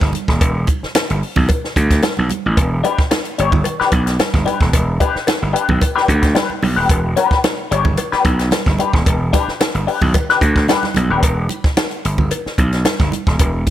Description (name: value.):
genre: funk.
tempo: 111 BPM.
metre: 4/4.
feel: straight.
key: E minor.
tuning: A4 = 440 Hz.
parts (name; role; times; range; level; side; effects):
gritty slap bass; bass; 0.0-13.6 s; D#1 to D2; -17 LUFS; equal; overdrive.
compact cocktail drum kit; drums; 0.0-13.7 s; hi-hat, kick drum, snare drum; -17 LUFS; equal; none.
congas; percussion; 0.0-13.7 s; none; -27 LUFS; right 7 dB; none.
cowbell; percussion; 0.4-13.5 s; none; -27 LUFS; left 4 dB; none.
clean electric guitar; accompaniment; 2.8-11.2 s; D4 to C#5; -19 LUFS; left 6 dB; wah, spring reverb.
room: light reverb, studio ambience.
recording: none.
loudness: -14 LUFS.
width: side -12 dB against mid.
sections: 0.0-13.7 A section.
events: break 0.0-2.6.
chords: 0.0 Em7.